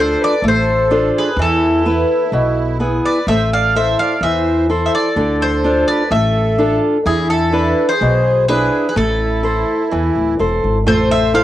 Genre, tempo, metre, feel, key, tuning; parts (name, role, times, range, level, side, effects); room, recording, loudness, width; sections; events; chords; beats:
greek folk, Greek bouzouki band; 126 BPM; 4/4; straight; A harmonic minor; A4 = 441 Hz
Greek bouzouki; melody; 0.0-11.4 s; G#4 to F5; -18 LUFS; left 2 dB; cassette tape, plate reverb
accordion; second line; 0.0-11.4 s; E4 to D5; -24 LUFS; right 7 dB; light tremolo tuning, cassette tape, plate reverb
fingerpicked steel-string acoustic guitar; accompaniment; 0.0-11.4 s; B2 to C5; -16 LUFS; equal; cassette tape, plate reverb
upright bass; bass; 0.0-11.4 s; D1 to E2; -20 LUFS; equal; transformer saturation
darbuka; percussion; 10.9-11.4 s; -23 LUFS; right 3 dB
moderate studio ambience, RT60 0.5 s; home recording on cassette; -13 LUFS; side -13 dB against mid
0.0-10.9 A section
0.0 Dm; 1.4 E; 3.3 Am; 5.2 Dm; 7.1 E7; 9.0 Am
0.43 0.90 | 1.37 1.85 2.32 2.80 | 3.27 3.74 4.22 4.69 | 5.17 5.64 6.11 6.59 | 7.06 7.54 8.01 8.49 | 8.96 9.44 9.91 10.38 | 10.86 11.33